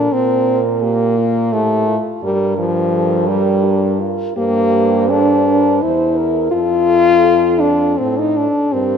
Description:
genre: classical, lyrical piece for horn quartet.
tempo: 84 BPM.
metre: 3/4.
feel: uneven beats, rubato.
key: unclear.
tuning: A4 = 436 Hz.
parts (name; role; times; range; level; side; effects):
mellow French horn; melody; 0.0-9.0 s; D4 to C5; -23 LUFS; left 4 dB; none.
mellow French horn; second line; 0.0-9.0 s; A4 to C5; -22 LUFS; right 12 dB; none.
mellow French horn; accompaniment; 0.0-9.0 s; F3 to F4; -14 LUFS; left 2 dB; none.
mellow French horn; bass; 0.0-9.0 s; E2 to Bb2; -22 LUFS; right 4 dB; none.
room: moderate concert hall reverb, RT60 2.3 s.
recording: none.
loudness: -13 LUFS.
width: side -7 dB against mid.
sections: 0.0-9.0 A section.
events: none.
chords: 0.1 Gm11; 2.2 Gm7; 4.4 C7/G; 6.5 F.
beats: | 0.12 0.83 1.52 | 2.23 2.93 3.64 | 4.37 5.11 5.83 | 6.52 7.25 8.00 | 8.73.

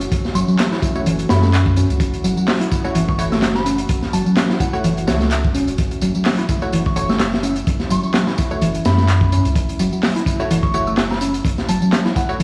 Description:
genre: breakbeat, breaks.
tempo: 127 BPM.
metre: 4/4.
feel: swing 55% on 16ths.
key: F# minor.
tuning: A4 = 440 Hz.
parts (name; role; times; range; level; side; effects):
warbly tape-like pad; sustained chords; 0.0-12.4 s; E3 to F#4; -29 LUFS; equal; chorus, built-in reverb, vintage 12-bit sampler grit, sidechain pumping.
saturated sub bass; bass; 0.0-12.4 s; E1 to F#2; -23 LUFS; equal; none.
crunchy breakbeat drum kit; drums; 0.0-12.4 s; hi-hat, kick drum, snare drum; -22 LUFS; equal; none.
electronic tambourine and handclaps; drums; 0.0-12.4 s; none; -30 LUFS; equal; none.
hollow-body short-scale picked electric bass; riff; 0.3-12.4 s; E3 to E4; -23 LUFS; equal; tube saturation, digital delay.
soft synth bell; melody; 0.4-12.4 s; F#5 to E6; -30 LUFS; equal; chorus, phaser, old record sound, digital delay.
filtered dub chord stab; stabs; 1.0-12.4 s; A3 to C#5; -28 LUFS; equal; chorus, digital delay.
room: moderate lush hall reverb, RT60 1.6 s.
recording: played on a big sound system in a bare room, stone room reverb, vinyl crackle, studio ambience.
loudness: -18 LUFS.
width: mono.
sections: 0.0-12.4 A section.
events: none.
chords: 0.0 F#m7.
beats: | 0.12 0.59 1.06 1.53 | 2.00 2.48 2.95 3.42 | 3.89 4.37 4.84 5.31 | 5.78 6.26 6.73 7.20 | 7.67 8.15 8.62 9.09 | 9.56 10.04 10.51 10.98 | 11.45 11.93 12.40.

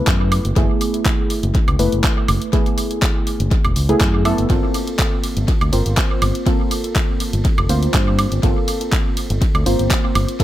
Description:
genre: deep house.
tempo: 122 BPM.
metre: 4/4.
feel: swing 54% on 16ths.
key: unclear.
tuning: A4 = 441 Hz.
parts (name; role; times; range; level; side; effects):
warm analog keys; stabs; 0.0-10.4 s; A3 to C5; -21 LUFS; right 1 dB; chorus, sidechain pumping, dub echo.
fingered electric bass; bass; 0.1-10.2 s; E1 to G2; -19 LUFS; equal; sidechain pumping.
deep house drum kit; drums; 0.1-10.4 s; handclaps, hi-hat, ride cymbal, woodblock; -23 LUFS; right 1 dB; small room reverb, tape echo.
electronic kick drum; drums; 0.1-10.4 s; none; -19 LUFS; equal; small room reverb.
room: little or no reverb.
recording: echo-heavy mix.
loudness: -15 LUFS.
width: side -14 dB against mid.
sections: 0.0-10.4 A section.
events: none.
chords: 0.0 F#m11; 4.5 Gm11.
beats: 0.07 | 0.56 1.05 1.55 2.04 | 2.53 3.02 3.51 4.01 | 4.50 4.99 5.48 5.97 | 6.46 6.96 7.45 7.94 | 8.43 8.92 9.42 9.91 | 10.40.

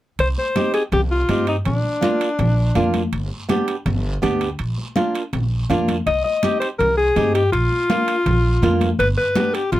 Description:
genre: latin, cumbia.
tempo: 164 BPM.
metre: 4/4.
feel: straight.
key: C minor.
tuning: A4 = 440 Hz.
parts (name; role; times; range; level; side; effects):
edgy alto saxophone; melody; 0.2-2.9, 6.1-9.8 s; D4 to Eb5; -20 LUFS; left 2 dB; none.
upright bass; bass; 0.2-9.8 s; G1 to G2; -21 LUFS; equal; none.
guiro; percussion; 0.2-9.8 s; none; -37 LUFS; right 3 dB; none.
timbales; percussion; 0.2-9.8 s; none; -33 LUFS; right 8 dB; none.
congas; percussion; 0.4-9.8 s; none; -25 LUFS; left 2 dB; none.
nylon-string guitar; accompaniment; 0.6-9.6 s; Bb3 to G4; -21 LUFS; right 3 dB; none.
room: light reverb.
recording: none.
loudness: -17 LUFS.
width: side -14 dB against mid.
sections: 0.2-9.8 A section.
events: none.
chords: 0.2 Cm; 1.7 Bb; 3.1 G; 4.6 Bb; 6.1 Cm; 7.5 Bb; 9.0 G.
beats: | 0.19 0.56 0.92 1.29 | 1.66 2.02 2.39 2.76 | 3.12 3.49 3.86 4.22 | 4.59 4.96 5.33 5.69 | 6.06 6.43 6.79 7.16 | 7.53 7.89 8.26 8.63 | 8.99 9.36 9.73.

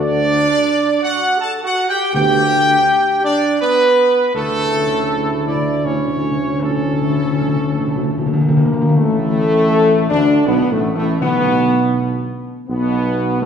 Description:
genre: classical.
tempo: 81 BPM.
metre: 3/4.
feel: straight.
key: D major.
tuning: A4 = 440 Hz.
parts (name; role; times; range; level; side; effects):
warm trumpet section; melody; 0.0-13.5 s; A3 to A5; -18 LUFS; right 1 dB; none.
bright trombone section; sustained chords; 0.0-13.5 s; A2 to A4; -23 LUFS; right 2 dB; none.
mellow French horn section; sustained chords; 0.0-13.5 s; C#3 to G4; -18 LUFS; left 2 dB; none.
mellow tuba; bass; 0.0-13.5 s; A1 to D2; -21 LUFS; right 1 dB; none.
timpani; percussion; 2.1-12.3 s; D3; -20 LUFS; left 2 dB; none.
room: wet scoring stage reverb, RT60 1.8 s.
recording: heard from further back in the room.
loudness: -14 LUFS.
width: side -7 dB against mid.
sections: 0.0-9.0 A section; 9.0-13.5 A section.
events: timpani fill 4.3-9.0.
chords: 0.0 D; 2.1 G/D; 4.3 A/D; 9.0 D5/A; 11.2 N.C..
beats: 0.67 1.41 | 2.14 2.88 3.61 | 4.35 5.09 5.86 | 6.63 7.41 8.19 | 8.97 9.72 10.47 | 11.22 11.96 12.70 | 13.43.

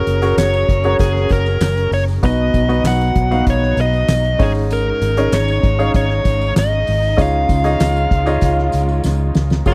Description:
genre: piano-driven pop.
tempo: 97 BPM.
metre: 4/4.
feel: straight.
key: unclear.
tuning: A4 = 440 Hz.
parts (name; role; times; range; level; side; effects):
dark smooth lead guitar; melody; 0.0-9.7 s; F#4 to F#5; -22 LUFS; equal; overdrive.
clear baby grand piano; accompaniment; 0.0-9.7 s; G#2 to E#5; -23 LUFS; equal; none.
warm studio string section; sustained chords; 0.0-9.7 s; C#3 to A#4; -32 LUFS; equal; none.
vintage muted fingered electric bass; bass; 0.1-9.7 s; F#1 to C#2; -20 LUFS; equal; none.
soft-mallet drum kit; drums; 0.1-9.7 s; crash cymbal, handclaps, hi-hat, kick drum, snare drum; -21 LUFS; equal; none.
tambourine; percussion; 0.1-9.7 s; none; -42 LUFS; equal; none.
room: little or no reverb.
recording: dry, close 1970s-style studio recording.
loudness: -16 LUFS.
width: mono.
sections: 0.0-9.7 A section.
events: drum fill 9.0-9.7.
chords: 0.0 F#add9; 2.2 B; 4.4 G#sus4; 7.2 C#add9.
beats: 0.38 1.00 1.62 | 2.23 2.85 3.47 4.09 | 4.71 5.33 5.95 6.56 | 7.18 7.80 8.42 9.04 | 9.66.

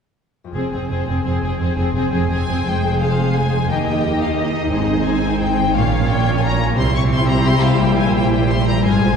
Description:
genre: classical, dramatic, fast romantic movement for symphony orchestra.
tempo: 174 BPM.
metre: 3/4.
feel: rubato.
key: F minor.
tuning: A4 = 441 Hz.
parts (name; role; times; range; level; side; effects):
concert harp; arpeggios; 0.4-9.2 s; F2 to Db5; -24 LUFS; left 5 dB; none.
warm studio violin section; melody; 0.5-9.2 s; C5 to Db6; -24 LUFS; left 5 dB; none.
warm symphonic violin section; second line; 0.5-9.2 s; F4 to Eb5; -24 LUFS; left 2 dB; none.
warm symphonic viola section; accompaniment; 0.5-9.2 s; F3 to Ab4; -23 LUFS; right 2 dB; none.
rich symphonic cello section; bass; 0.5-9.2 s; Eb2 to C3; -22 LUFS; right 2 dB; none.
rich symphonic double bass section; bass; 0.5-9.2 s; F1 to Eb2; -22 LUFS; right 2 dB; none.
room: wet church reverb, RT60 2.9 s.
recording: heard from further back in the room.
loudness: -15 LUFS.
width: side -6 dB against mid.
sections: 0.5-2.7 A section; 2.7-9.2 B section.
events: none.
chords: 0.5 Fm; 3.7 Eb; 4.7 Ab; 5.8 Bbm; 6.8 C; 7.8 C7/Bb.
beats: | 0.55 0.91 1.25 | 1.60 1.94 2.29 | 2.66 3.02 3.36 | 3.71 4.05 4.39 | 4.73 5.08 5.42 | 5.76 6.11 6.45 | 6.78 7.12 7.46 | 7.81 8.16 8.51 | 8.85.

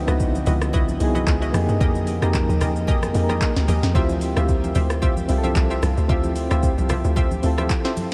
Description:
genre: amapiano.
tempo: 112 BPM.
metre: 4/4.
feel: swing 55% on 16ths.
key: unclear.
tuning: A4 = 440 Hz.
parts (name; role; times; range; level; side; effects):
soft electric-piano-like synth keys; accompaniment; 0.0-8.1 s; Bb3 to Bb4; -28 LUFS; equal; chorus, tremolo.
deep dark ambient pad; sustained chords; 0.0-3.9 s; C#3 to G5; -35 LUFS; equal; none.
hollow log drum bass; bass; 0.0-7.7 s; C2 to G2; -24 LUFS; equal; none.
hollow square pluck; stabs; 0.1-7.9 s; E4 to E5; -32 LUFS; equal; chorus, delay.
smooth R&B drum kit; drums; 0.1-8.1 s; handclaps, hi-hat, kick drum, rim click, shaker, snare drum; -26 LUFS; equal; overdrive, vintage 12-bit sampler grit.
congas; percussion; 0.1-8.1 s; none; -33 LUFS; equal; none.
room: moderate huge ambient reverb, RT60 7.9 s.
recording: dreamy mix soaked in reverb.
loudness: -21 LUFS.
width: mono.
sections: 0.0-4.0 A section; 4.0-8.1 A section.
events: drop 0.0-4.0, 4.0-8.1.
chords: 0.0 C#m11; 1.5 Fm11; 4.0 Dm11.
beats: 0.20 0.74 1.27 | 1.81 2.34 2.88 3.42 | 3.95 4.49 5.02 5.56 | 6.09 6.63 7.17 7.70.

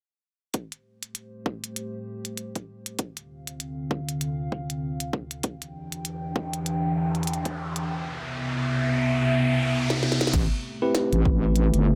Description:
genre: glitch hop.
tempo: 98 BPM.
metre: 4/4.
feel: swing 59% on 16ths.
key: A minor.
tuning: A4 = 440 Hz.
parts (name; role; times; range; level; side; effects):
dark analog pad; sustained chords; 1.3-12.0 s; C3 to G5; -30 LUFS; equal; chorus, sidechain pumping.
electronic kick drum; drums; 0.5-11.4 s; none; -30 LUFS; equal; high-pass filter on kick.
glitchy drum kit; drums; 0.5-11.8 s; crash cymbal, hi-hat, snare drum; -32 LUFS; equal; none.
riser; sound effects; 6.2-10.3 s; none; -34 LUFS; equal; none.
wobble bass; bass; 10.3-12.0 s; G1 to A1; -24 LUFS; equal; chorus.
bell-like tine electric piano; stabs; 10.8-12.0 s; C4 to B4; -28 LUFS; equal; vintage 12-bit sampler grit, sidechain pumping, delay.
room: light reverb.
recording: none.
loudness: -27 LUFS.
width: mono.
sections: 0.5-10.3 A section; 10.3-12.0 B section.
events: riser 6.2-10.3; drum fill 9.9-10.3.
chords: 0.5 Am7; 3.0 Dm7; 5.4 Em7; 7.9 Cmaj7; 10.3 Am7.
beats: | 0.54 1.15 1.77 2.38 | 2.99 3.60 4.21 4.83 | 5.44 6.05 6.66 7.28 | 7.89 8.50 9.11 9.72 | 10.34 10.95 11.56.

